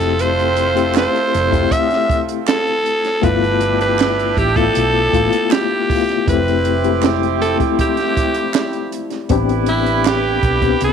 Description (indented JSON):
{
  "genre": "lush 1970s-style soul",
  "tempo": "79 BPM",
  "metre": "4/4",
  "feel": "straight",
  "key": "unclear",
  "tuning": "A4 = 440 Hz",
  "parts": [
    { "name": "raspy alto saxophone", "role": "melody", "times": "0.0-10.9 s", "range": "E4 to E5", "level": "-18 LUFS", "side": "equal", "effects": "none" },
    { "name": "reed electric piano", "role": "accompaniment", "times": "0.0-10.9 s", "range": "G#3 to G4", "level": "-20 LUFS", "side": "left 13 dB", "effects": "fast tremolo" },
    { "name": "warm horn section", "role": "stabs", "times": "0.0-10.9 s", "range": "A3 to B4", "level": "-23 LUFS", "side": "right 13 dB", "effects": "none" },
    { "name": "hollow-body short-scale fingered electric bass", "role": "bass", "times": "0.0-10.9 s", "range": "F1 to C2", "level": "-21 LUFS", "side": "right 1 dB", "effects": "none" },
    { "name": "compact cocktail drum kit", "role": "drums", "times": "0.0-10.9 s", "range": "hi-hat, kick drum, snare drum", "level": "-20 LUFS", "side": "right 4 dB", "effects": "none" },
    { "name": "group handclap", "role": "percussion", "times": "0.9-10.2 s", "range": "none", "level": "-29 LUFS", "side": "right 15 dB", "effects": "none" },
    { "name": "mellow French horn section", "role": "sustained chords", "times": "6.3-10.9 s", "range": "D3 to B4", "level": "-28 LUFS", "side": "right 1 dB", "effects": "none" }
  ],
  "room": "light reverb, small room ambience",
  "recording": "1960s-style stereo with parts hard left and right",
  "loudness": "-14 LUFS",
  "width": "side -7 dB against mid",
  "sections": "0.0-10.9 A section",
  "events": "none",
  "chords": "0.0 Fmaj7; 3.2 G13; 6.3 Fmaj9; 9.3 Am11"
}